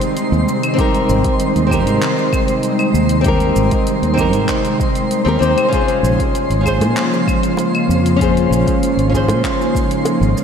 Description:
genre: sunset chillout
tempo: 97 BPM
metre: 4/4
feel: straight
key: Ab major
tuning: A4 = 440 Hz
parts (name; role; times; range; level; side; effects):
- flamenco guitar; accompaniment; 0.0-10.4 s; C4 to C5; -18 LUFS; moving between left 4 dB and right 3 dB; auto-pan, analog delay, shimmer reverb
- ethereal airy pad; sustained chords; 0.0-10.4 s; C3 to F4; -18 LUFS; equal; ensemble chorus, built-in reverb, shimmer reverb
- deep house drum kit; drums; 0.0-10.4 s; claves, handclaps, hi-hat, shaker; -27 LUFS; left 1 dB; overdrive
- twinkling granular texture; texture; 0.0-10.4 s; C5 to C6; -25 LUFS; right 1 dB; built-in reverb, lush chorus, shimmer reverb
- fretless electric bass; bass; 0.3-10.3 s; Ab1 to Bb2; -16 LUFS; equal; none
- electronic kick drum; drums; 0.8-9.9 s; none; -21 LUFS; equal; overdrive
- bongos; percussion; 6.8-10.2 s; none; -26 LUFS; right 1 dB; none
room: wet lush hall reverb, RT60 2.4 s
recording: dreamy mix soaked in reverb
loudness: -13 LUFS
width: side -7 dB against mid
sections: 0.0-10.4 A section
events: none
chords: 0.0 Abmaj7; 5.7 Bbm7

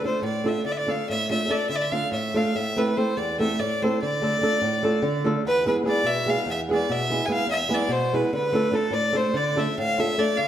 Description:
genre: balkan folk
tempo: 291 BPM (eighths)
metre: 7/8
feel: straight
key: D dorian sharp4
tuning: A4 = 437 Hz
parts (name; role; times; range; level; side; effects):
- clear fiddle; melody; 0.0-10.5 s; A4 to G#5; -24 LUFS; left 1 dB; none
- flamenco guitar; accompaniment; 0.0-10.5 s; E2 to A4; -24 LUFS; right 1 dB; none
room: wet stone room reverb, RT60 1.3 s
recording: band playing live in one room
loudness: -21 LUFS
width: side -10 dB against mid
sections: 0.0-5.5 A section; 5.5-10.5 B section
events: none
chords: 0.0 Dm; 2.6 Am; 4.0 Dm; 5.5 E; 8.3 Dm

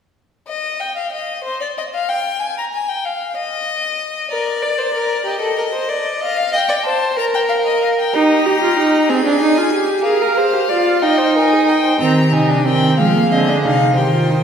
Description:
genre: classical, baroque-style fugue for string quartet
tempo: 62 BPM (dotted quarters)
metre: 6/8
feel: straight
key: Eb major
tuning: A4 = 441 Hz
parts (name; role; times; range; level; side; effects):
- rich violin; melody; 0.5-14.4 s; C5 to Bb5; -20 LUFS; left 3 dB; none
- dark violin; second line; 4.3-14.4 s; G4 to F5; -20 LUFS; equal; none
- rich viola; accompaniment; 8.1-14.4 s; Ab3 to Bb4; -15 LUFS; right 2 dB; none
- rich cello; bass; 12.0-14.4 s; C3 to F3; -16 LUFS; right 2 dB; none
room: wet scoring stage reverb, RT60 1.7 s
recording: heard from further back in the room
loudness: -14 LUFS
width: side -7 dB against mid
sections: 0.5-12.0 A section; 12.0-14.4 B section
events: none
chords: 0.5 N.C.; 4.3 Bb; 5.3 N.C.; 6.2 F7/Eb; 7.2 Bb5; 8.1 Eb; 9.1 Ab/C; 10.1 Bb7/Ab; 11.0 Eb; 12.0 Cm; 13.0 Fm

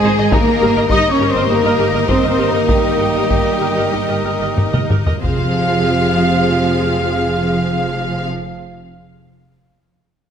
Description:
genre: cinematic, epic orchestral film score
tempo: 89-104 BPM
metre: 4/4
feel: straight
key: F minor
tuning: A4 = 441 Hz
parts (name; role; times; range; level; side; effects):
- warm symphonic violin section; melody; 0.0-8.3 s; G4 to F5; -24 LUFS; left 5 dB; none
- concert flute; second line; 0.0-8.3 s; F5 to Eb6; -26 LUFS; left 2 dB; none
- rich symphonic violin section; second line; 0.0-8.2 s; G4 to F5; -25 LUFS; left 6 dB; none
- rich symphonic viola section; accompaniment; 0.0-8.2 s; Eb4 to Eb5; -24 LUFS; right 1 dB; none
- clear trombone section; sustained chords; 0.0-8.3 s; C3 to C4; -24 LUFS; right 5 dB; none
- dark French horn section; sustained chords; 0.0-8.2 s; F4 to C5; -24 LUFS; left 7 dB; none
- rich symphonic string section; sustained chords; 0.0-8.2 s; C4 to F5; -26 LUFS; left 1 dB; none
- warm trumpet; stabs; 0.0-8.3 s; Eb5 to F5; -23 LUFS; equal; none
- rich symphonic double bass section; bass; 0.0-8.2 s; F1 to Ab1; -22 LUFS; right 3 dB; none
- warm symphonic cello section; bass; 0.0-8.3 s; F3 to Eb4; -20 LUFS; right 2 dB; none
- solo taiko drums; drums; 0.3-6.5 s; none; -19 LUFS; equal; none
- timpani; percussion; 5.2-8.2 s; F2; -29 LUFS; left 1 dB; none
room: moderate scoring stage reverb, RT60 1.9 s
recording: none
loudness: -13 LUFS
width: side -8 dB against mid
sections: 0.0-5.2 A section; 5.2-7.9 B section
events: slowing down 0.0-5.2; drum fill 4.6-5.2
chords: 0.3 Eb/G; 5.2 Fm

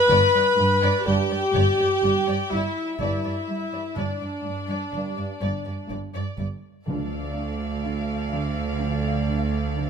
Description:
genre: cinematic, suspense film score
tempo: 62 BPM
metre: 4/4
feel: straight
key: D dorian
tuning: A4 = 436 Hz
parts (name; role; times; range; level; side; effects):
- warm studio violin section; second line; 0.0-9.9 s; D5 to B5; -31 LUFS; left 2 dB; none
- rich studio viola section; accompaniment; 0.0-9.9 s; D4 to B4; -26 LUFS; right 2 dB; none
- mellow French horn section; sustained chords; 0.0-9.2 s; F3 to B4; -27 LUFS; left 7 dB; none
- dark studio violin section; melody; 0.1-9.9 s; D5 to F5; -35 LUFS; left 3 dB; none
- warm studio cello section; riff; 0.1-9.9 s; G2 to D4; -31 LUFS; right 1 dB; none
- warm studio cello section; bass; 0.1-9.9 s; D2 to G2; -30 LUFS; right 2 dB; none
- warm studio double bass section; bass; 0.1-9.9 s; G1 to D2; -28 LUFS; right 4 dB; none
- bright trombone section; sustained chords; 1.1-5.3 s; G2 to D4; -33 LUFS; right 4 dB; none
- timpani; percussion; 6.9-8.3 s; D3; -34 LUFS; left 2 dB; none
room: light reverb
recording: close, detailed microphones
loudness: -22 LUFS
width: side -6 dB against mid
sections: 0.0-6.9 A section; 6.9-9.9 B section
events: none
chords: 0.0 G; 6.9 Dm

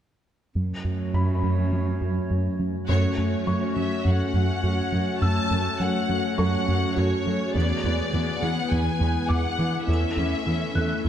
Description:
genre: cinematic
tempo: 103 BPM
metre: 4/4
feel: straight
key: F# minor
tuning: A4 = 440 Hz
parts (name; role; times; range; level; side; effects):
- warbly tape-like pad; sustained chords; 0.9-11.1 s; A3 to G#5; -29 LUFS; left 2 dB; chorus, built-in reverb
- harp-like synth pluck; arpeggios; 0.6-11.1 s; E3 to F#4; -33 LUFS; right 4 dB; chorus, tape echo
- rubbery square bass; riff; 0.6-11.1 s; E2 to F#3; -27 LUFS; equal; none
- warm symphonic cello section; bass; 0.6-11.1 s; E2 to F#2; -29 LUFS; right 2 dB; none
- felt-muted upright piano; texture; 1.1-11.1 s; A4 to F#6; -36 LUFS; left 2 dB; tape echo
- warm symphonic violin section; melody; 2.9-11.1 s; C#5 to A5; -30 LUFS; left 4 dB; none
- warm studio viola section; accompaniment; 2.9-11.1 s; A3 to A4; -33 LUFS; right 1 dB; none
room: moderate scoring stage reverb, RT60 1.7 s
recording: none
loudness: -22 LUFS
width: side -10 dB against mid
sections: 0.6-2.9 A section; 2.9-11.1 B section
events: band accent 2.9-3.5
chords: 0.6 F#m; 7.5 E7; 9.9 A/E

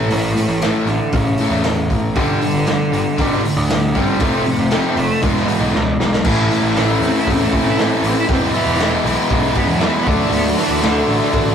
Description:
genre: quiet-loud alternative rock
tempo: 118 BPM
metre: 4/4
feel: straight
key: A major from 6.2 s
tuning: A4 = 440 Hz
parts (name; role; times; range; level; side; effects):
- bright cello; melody; 0.0-11.1 s; A2 to E4; -22 LUFS; right 2 dB; none
- fingerpicked acoustic archtop guitar; arpeggios; 0.0-2.2 s; A2 to E4; -27 LUFS; equal; slapback echo
- fuzz guitar; riff; 0.0-11.5 s; G2 to F#4; -19 LUFS; left 2 dB; distortion
- fuzz picked electric bass; bass; 0.0-11.5 s; E1 to A2; -22 LUFS; right 1 dB; overdrive
- raw garage drum kit; drums; 0.1-11.5 s; crash cymbal, hi-hat, kick drum, snare drum; -21 LUFS; equal; none
- thick fuzz guitar; riff; 2.1-11.5 s; E2 to F#4; -22 LUFS; right 4 dB; distortion
- string machine, full ensemble; sustained chords; 6.2-11.5 s; E4 to A5; -31 LUFS; right 2 dB; none
room: moderate small room reverb, RT60 0.5 s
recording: rough rehearsal-room recording, warm saturation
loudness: -14 LUFS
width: side -8 dB against mid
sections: 0.0-6.2 A section; 6.2-11.5 B section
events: drum fill 5.7-6.2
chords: 0.0 A; 2.2 G5; 4.2 F; 5.2 E; 6.2 Aadd9; 8.3 E; 10.1 D

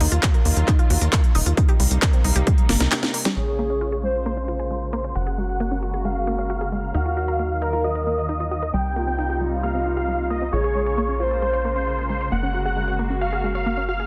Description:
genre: uplifting trance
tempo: 134 BPM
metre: 4/4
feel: straight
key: Bb minor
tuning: A4 = 440 Hz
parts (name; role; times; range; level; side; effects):
- muted studio string section; sustained chords; 0.0-14.1 s; C3 to F5; -34 LUFS; equal; sidechain pumping, low-pass filter
- unison pluck; arpeggios; 0.0-14.0 s; G3 to Db5; -32 LUFS; equal; sidechain pumping, dub echo
- tight sequencer bass; bass; 0.0-14.1 s; Eb1 to Eb2; -27 LUFS; equal; tube saturation, sidechain pumping
- techno drum kit; drums; 0.0-3.3 s; handclaps, hi-hat, snare drum; -26 LUFS; equal; none
- electronic kick drum; drums; 0.2-2.6 s; none; -20 LUFS; equal; none
- big supersaw lead; melody; 3.4-14.1 s; C5 to G5; -31 LUFS; equal; phaser, cassette tape, sidechain pumping, low-pass filter, dub echo
- warm velvety synth lead; second line; 3.4-14.0 s; F4 to C5; -29 LUFS; equal; chorus, cassette tape, dub echo
room: light reverb, digital ambience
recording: dense, heavily limited modern master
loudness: -22 LUFS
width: mono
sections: 0.0-3.4 A section; 3.4-14.1 B section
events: drum fill 2.7-3.4; break 2.9-3.4; filter sweep on supersaw synth 3.4-14.1; filter sweep on synth arpeggio sound 3.4-14.1; filter sweep on string section 3.4-14.1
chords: 0.0 Ebmadd9; 1.6 Cm7; 3.4 Bbm7; 5.2 Gbadd9; 6.9 Ebmadd9; 8.7 Cm7; 10.5 Bbm7; 12.3 Gbadd9

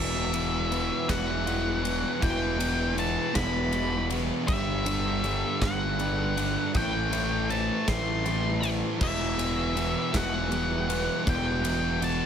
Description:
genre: post-rock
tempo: 53 BPM (dotted quarters)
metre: 6/8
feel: straight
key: E minor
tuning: A4 = 441 Hz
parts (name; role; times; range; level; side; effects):
- octave-fuzz lead guitar; melody; 0.0-12.3 s; E5 to C6; -31 LUFS; left 1 dB; distortion, digital delay
- twelve-string electric guitar; arpeggios; 0.0-12.3 s; E2 to D4; -36 LUFS; left 2 dB; digital delay
- fuzz guitar; riff; 0.0-12.3 s; E2 to A3; -30 LUFS; right 1 dB; distortion
- fuzz fingered electric bass; bass; 0.0-12.2 s; E1 to A1; -32 LUFS; equal; overdrive
- huge arena drum kit; drums; 0.3-12.2 s; crash cymbal, kick drum, ride cymbal, snare drum; -32 LUFS; equal; none
room: light reverb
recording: none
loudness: -25 LUFS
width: side -8 dB against mid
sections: 0.0-12.3 A section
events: none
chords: 0.0 Emadd9; 4.5 G; 6.7 Am7; 9.0 Emadd9

